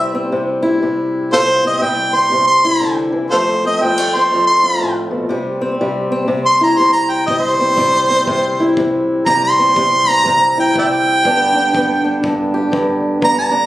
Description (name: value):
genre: acoustic country blues, solo or duo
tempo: 121 BPM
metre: 4/4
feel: swing 63% on 8ths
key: C major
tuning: A4 = 440 Hz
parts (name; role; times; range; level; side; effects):
- warm harmonica; melody; 0.0-13.7 s; F4 to C6; -13 LUFS; right 1 dB; none
- fingerpicked swing-style acoustic guitar; accompaniment; 0.0-13.7 s; F2 to G4; -17 LUFS; left 1 dB; none
- kick drum; drums; 7.3-13.4 s; none; -28 LUFS; right 1 dB; none
room: light reverb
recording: recorded on a phone in the room, club reverb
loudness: -12 LUFS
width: side -15 dB against mid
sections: 0.0-13.7 A section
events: harmonica solo 0.0-13.7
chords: 0.0 C; 3.3 F; 5.3 C; 11.2 G